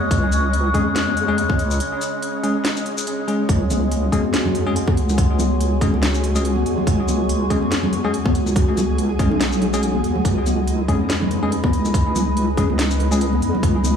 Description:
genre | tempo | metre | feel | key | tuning
deep dubstep | 142 BPM | 4/4 | swing 56% on 16ths, half-time | C# minor | A4 = 440 Hz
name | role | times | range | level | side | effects
overtone-sweeping drone | sustained chords | 0.0-14.0 s | C#3 to C#5 | -25 LUFS | equal | chorus, built-in reverb, phaser
deep soft wobble bass | bass | 0.0-14.0 s | B1 to E2 | -21 LUFS | equal | chorus
flickering grainy texture | texture | 0.0-14.0 s | G#3 to D#5 | -28 LUFS | left 1 dB | built-in reverb
electronic kick drum | drums | 0.1-13.7 s | none | -21 LUFS | equal | none
garage drum kit | drums | 0.1-13.9 s | hi-hat, shaker, snare drum | -27 LUFS | equal | none
bell-like tine electric piano | stabs | 0.7-13.2 s | G#3 to G#4 | -26 LUFS | left 3 dB | dub echo
congas and bongos | percussion | 3.7-13.9 s | none | -26 LUFS | right 1 dB | dub echo
room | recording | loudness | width
light reverb, digital ambience | studio reverb | -17 LUFS | side -7 dB against mid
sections
0.0-14.0 A section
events
break 1.8-3.5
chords
0.0 C#5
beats
| 0.11 0.53 0.96 1.38 | 1.80 2.22 2.65 3.07 | 3.49 3.91 4.34 4.76 | 5.18 5.60 6.03 6.45 | 6.87 7.29 7.72 8.14 | 8.56 8.98 9.41 9.83 | 10.25 10.67 11.10 11.52 | 11.94 12.36 12.79 13.21 | 13.63

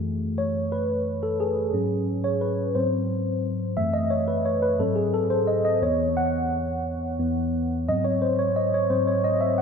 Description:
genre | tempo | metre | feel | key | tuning
gospel | 58 BPM (dotted quarters) | 6/8 | straight | unclear | A4 = 440 Hz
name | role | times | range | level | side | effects
mellow tine electric piano | accompaniment | 0.0-9.6 s | E2 to F#5 | -22 LUFS | equal | analog chorus
room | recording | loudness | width
wet church reverb, RT60 2.8 s | dreamy mix soaked in reverb, faint mains hum | -22 LUFS | side -6 dB against mid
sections
0.0-9.6 A section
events
tine electric piano solo 0.0-9.6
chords
0.0 F#m7; 1.7 G#7sus4; 2.8 G#7; 3.8 F#m7; 4.8 G#7; 5.8 Esus2; 7.9 G#7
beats
0.70 | 1.73 2.76 | 3.78 4.81 | 5.83 6.86 | 7.89 8.91

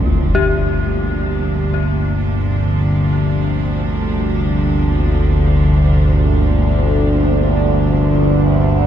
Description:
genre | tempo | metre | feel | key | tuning
dark ambient drone | free time | none | none | G minor | A4 = 439 Hz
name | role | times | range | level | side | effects
warm chamber cello section | sustained chords | 0.0-8.9 s | Bb2 to D4 | -24 LUFS | right 1 dB | none
dark detuned synth bell | arpeggios | 0.0-8.9 s | F4 to G4 | -25 LUFS | left 4 dB | chorus, ping-pong delay
analog drone | drone | 0.0-8.9 s | G1 to D2 | -14 LUFS | equal | chorus, phaser
room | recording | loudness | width
moderate huge ambient reverb, RT60 7.7 s | none | -13 LUFS | side -10 dB against mid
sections
0.0-8.9 A section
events
fade-in on cello section 0.0-8.9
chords
0.0 Gm7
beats
free time

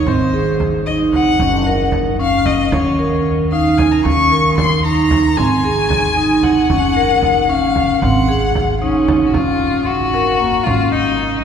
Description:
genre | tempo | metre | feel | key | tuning
contemporary instrumental, chamber music in an uneven meter | 227 BPM (eighths) | 5/8 | straight | Gb lydian | A4 = 440 Hz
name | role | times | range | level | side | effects
rich violin | melody | 0.0-11.4 s | Db4 to Db6 | -17 LUFS | left 4 dB | none
upright bass | bass | 0.0-11.4 s | Gb1 to Eb2 | -20 LUFS | right 2 dB | none
vibraphone with medium mallets | arpeggios | 0.1-11.1 s | Bb3 to Bb4 | -16 LUFS | right 1 dB | none
frame drum | percussion | 0.1-11.1 s | none | -23 LUFS | right 2 dB | none
room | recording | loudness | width
wet cathedral reverb, RT60 6.0 s | recorded in a church or concert hall | -13 LUFS | side -7 dB against mid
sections
0.0-9.3 A section; 9.3-11.4 B section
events
none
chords
0.1 Ab; 1.4 Gb; 2.7 Eb5; 5.4 Ab; 6.7 Gbmaj7; 8.0 Ab7; 9.3 Gb; 10.7 Absus4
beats
| 0.07 0.33 0.60 0.86 1.13 | 1.39 1.66 1.93 2.19 2.46 | 2.72 2.99 3.25 3.52 3.78 | 4.05 4.31 4.58 4.84 5.11 | 5.37 5.64 5.90 6.17 6.43 | 6.70 6.96 7.22 7.49 7.75 | 8.02 8.28 8.55 8.81 9.08 | 9.34 9.61 9.87 10.13 10.40 | 10.66 10.93 11.19

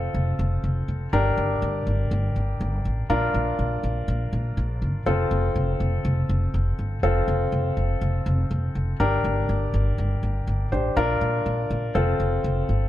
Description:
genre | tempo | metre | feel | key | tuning
synth-pop | 122 BPM | 4/4 | straight | F major | A4 = 439 Hz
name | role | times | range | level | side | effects
warm concert grand piano | accompaniment | 0.0-12.9 s | C4 to C5 | -26 LUFS | left 2 dB | none
upright bass | bass | 0.0-12.9 s | F1 to Bb1 | -23 LUFS | equal | none
room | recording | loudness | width
light reverb | dark, warm production, lossy compression artefacts | -22 LUFS | side -13 dB against mid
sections
0.0-12.9 A section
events
none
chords
0.0 F; 1.1 Gm; 3.1 Bb; 5.1 F; 9.0 Gm; 11.0 Bb; 11.9 Fadd9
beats
0.15 0.64 | 1.13 1.62 2.11 2.60 | 3.10 3.59 4.08 4.57 | 5.06 5.56 6.05 6.54 | 7.03 7.52 8.02 8.51 | 9.00 9.49 9.98 10.47 | 10.96 11.46 11.95 12.44

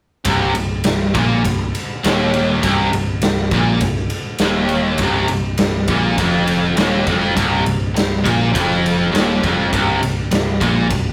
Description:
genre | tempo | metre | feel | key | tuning
blues rock power trio and southern rock | 102 BPM | 4/4 | straight | C minor | A4 = 439 Hz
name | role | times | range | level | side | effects
distorted electric guitar | riff | 0.2-11.1 s | C2 to Bb2 | -20 LUFS | equal | distortion
big rock drum kit | drums | 0.2-11.0 s | kick drum, ride cymbal, snare drum | -22 LUFS | equal | none
picked electric bass | bass | 0.3-11.1 s | C1 to Bb1 | -24 LUFS | equal | none
room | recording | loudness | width
moderate small room reverb, RT60 0.5 s | rough rehearsal-room recording, warm saturation | -17 LUFS | mono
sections
0.3-11.1 A section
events
none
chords
0.3 Cm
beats
| 0.26 0.85 1.45 2.04 | 2.63 3.22 3.81 4.41 | 5.00 5.59 6.18 6.77 | 7.36 7.95 8.54 9.13 | 9.72 10.31 10.90

